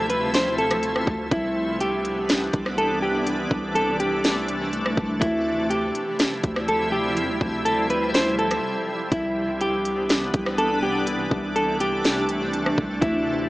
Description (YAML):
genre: hip hop, atmospheric cloud-rap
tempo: 123 BPM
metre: 4/4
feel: half-time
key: unclear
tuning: A4 = 440 Hz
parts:
  - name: semi-hollow electric guitar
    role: melody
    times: 0.0-13.5 s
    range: E4 to C5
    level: -24 LUFS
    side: equal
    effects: low-pass filter, tape echo
  - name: shimmering ambient pad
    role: sustained chords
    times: 0.0-13.5 s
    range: C3 to E4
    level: -26 LUFS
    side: equal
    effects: chorus, built-in reverb, sidechain pumping
  - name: long sustained 808-style bass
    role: bass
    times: 0.0-13.5 s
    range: C2 to F2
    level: -31 LUFS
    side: equal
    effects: none
  - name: trap drum kit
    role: drums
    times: 0.1-13.1 s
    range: hi-hat, kick drum, rim click, snare drum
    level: -24 LUFS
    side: equal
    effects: tape echo
room: light reverb, digital ambience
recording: echo-heavy mix, small speaker sound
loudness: -21 LUFS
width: side -18 dB against mid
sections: 0.0-9.1 A section; 9.1-13.5 A section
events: break 8.6-9.1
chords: 0.0 Dm9; 1.3 Cmaj9; 5.2 Dm11; 9.1 Cmaj9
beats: 0.34 0.83 | 1.31 1.80 2.29 2.78 | 3.27 3.75 4.24 4.73 | 5.22 5.70 6.19 6.68 | 7.17 7.66 8.14 8.63 | 9.12 9.61 10.09 10.58 | 11.07 11.56 12.05 12.53 | 13.02